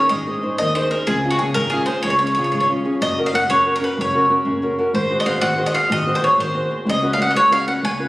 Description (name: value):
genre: italian folk, Italian serenade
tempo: 124 BPM (dotted quarters)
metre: 6/8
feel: straight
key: Db major, F# major from 3.0 s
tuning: A4 = 438 Hz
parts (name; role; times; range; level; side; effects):
- bowl-back mandolin; melody; 0.0-8.1 s; Gb4 to G#5; -18 LUFS; equal; tape echo
- flamenco guitar; accompaniment; 0.0-8.1 s; Db3 to C5; -22 LUFS; equal; none
- rich double bass; bass; 0.0-8.0 s; F#1 to Db3; -26 LUFS; equal; none
room: wet recital hall reverb, RT60 1.5 s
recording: recorded on a phone in the room, studio reverb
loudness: -16 LUFS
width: side -19 dB against mid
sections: 0.0-3.0 A section; 3.0-8.1 B section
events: none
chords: 0.1 Ab; 1.1 Db; 3.0 F#; 4.9 G#7; 6.9 C#7sus4